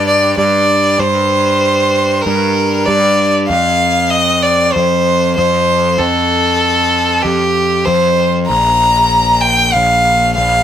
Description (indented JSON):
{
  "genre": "post-rock",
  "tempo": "96 BPM",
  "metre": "4/4",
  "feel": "straight",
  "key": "unclear",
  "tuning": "A4 = 442 Hz",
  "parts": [
    { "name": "clear violin", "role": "melody", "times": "0.0-10.6 s", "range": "G4 to Bb5", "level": "-11 LUFS", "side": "equal", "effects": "none" },
    { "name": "fuzz picked electric bass", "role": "bass", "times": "0.0-10.6 s", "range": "Bb1 to G2", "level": "-16 LUFS", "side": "equal", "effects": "overdrive" }
  ],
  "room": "moderate studio reverb, RT60 0.7 s",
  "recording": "band playing live in one room",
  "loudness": "-10 LUFS",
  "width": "side -10 dB against mid",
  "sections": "0.0-10.6 A section",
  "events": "none",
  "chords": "0.0 G5; 3.5 F; 8.5 Bb5",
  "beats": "0.38 | 1.00 1.63 2.26 2.88 | 3.51 4.13 4.76 5.38 | 6.01 6.63 7.26 7.88 | 8.51 9.13 9.76 10.38"
}